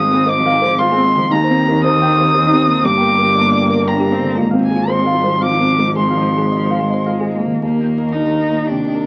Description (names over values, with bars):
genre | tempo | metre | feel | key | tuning
neoclassical piano and strings | 108-120 BPM | 3/4 | rubato | unclear | A4 = 440 Hz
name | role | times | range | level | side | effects
warm violin | melody | 0.0-9.1 s | G4 to Eb6 | -19 LUFS | equal | none
rich cello | second line | 0.0-9.1 s | Eb3 to Eb4 | -24 LUFS | equal | none
felt-muted upright piano | accompaniment | 0.0-9.1 s | Eb2 to G5 | -22 LUFS | equal | none
warm double bass | bass | 0.0-9.1 s | G1 to Eb2 | -22 LUFS | equal | none
thumb-piano-like synth pluck | arpeggios | 0.1-7.3 s | Eb4 to G5 | -25 LUFS | equal | chorus
room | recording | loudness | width
light reverb | very old 78 rpm record, vinyl crackle | -15 LUFS | mono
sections
0.0-7.6 A section; 7.6-9.1 B section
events
none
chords
0.0 Ab6; 1.3 Eb6; 2.8 Gm; 4.4 Fm/Ab; 6.0 Ab6; 7.6 Eb5